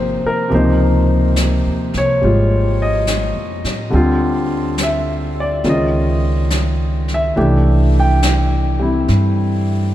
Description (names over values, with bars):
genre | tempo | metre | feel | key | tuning
jazz ballad | 70 BPM | 4/4 | swing 68% on 8ths | unclear | A4 = 439 Hz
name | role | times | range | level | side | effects
warm grand piano | accompaniment | 0.0-9.9 s | C3 to G5 | -16 LUFS | left 1 dB | none
upright bass | bass | 0.0-9.9 s | Ab1 to A2 | -16 LUFS | right 1 dB | none
jazz brush drum kit | drums | 0.5-9.9 s | brushed snare drum, hi-hat, snare drum | -27 LUFS | left 1 dB | none
room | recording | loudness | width
moderate cathedral reverb, RT60 5.3 s | in a vast, echoing space | -13 LUFS | side -13 dB against mid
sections
0.0-9.9 A section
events
none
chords
0.0 Abadd9; 0.5 Dbmaj9; 3.9 Dm7; 5.6 Dbadd9; 7.4 Cadd9